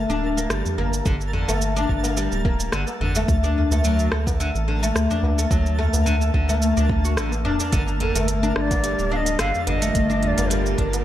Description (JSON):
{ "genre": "organic downtempo", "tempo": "108 BPM", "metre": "4/4", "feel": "swing 54% on 16ths", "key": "G minor", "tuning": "A4 = 441 Hz", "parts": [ { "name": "oud", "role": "arpeggios", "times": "0.0-10.9 s", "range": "D3 to F#4", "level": "-24 LUFS", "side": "left 2 dB", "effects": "digital delay, shimmer reverb" }, { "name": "round analog bass", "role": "bass", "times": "0.0-11.0 s", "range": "D1 to D2", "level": "-23 LUFS", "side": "equal", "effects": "none" }, { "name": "twinkling granular texture", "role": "texture", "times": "0.0-11.0 s", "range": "Bb3 to A5", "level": "-32 LUFS", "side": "right 1 dB", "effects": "built-in reverb, shimmer reverb" }, { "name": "afro-pop drum kit", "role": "drums", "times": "0.1-11.0 s", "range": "hi-hat, rim click, shaker", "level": "-28 LUFS", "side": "right 1 dB", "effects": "small room reverb" }, { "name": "tabla", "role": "percussion", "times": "0.2-11.0 s", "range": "none", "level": "-32 LUFS", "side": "left 1 dB", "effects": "none" }, { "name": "electronic kick drum", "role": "drums", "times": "1.1-10.9 s", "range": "none", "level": "-23 LUFS", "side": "equal", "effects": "small room reverb" }, { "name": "bowed-like drone", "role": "sustained chords", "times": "9.3-11.0 s", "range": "D3 to F4", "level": "-32 LUFS", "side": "equal", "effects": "built-in reverb, sidechain pumping" }, { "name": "breathy ney", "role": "melody", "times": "8.0-11.0 s", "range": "Bb4 to F5", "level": "-26 LUFS", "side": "right 1 dB", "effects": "tape echo, shimmer reverb" } ], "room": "light reverb", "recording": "none", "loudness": "-19 LUFS", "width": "side -12 dB against mid", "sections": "0.0-11.0 A section", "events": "none", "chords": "0.0 Gm; 3.3 D; 7.7 Gm7" }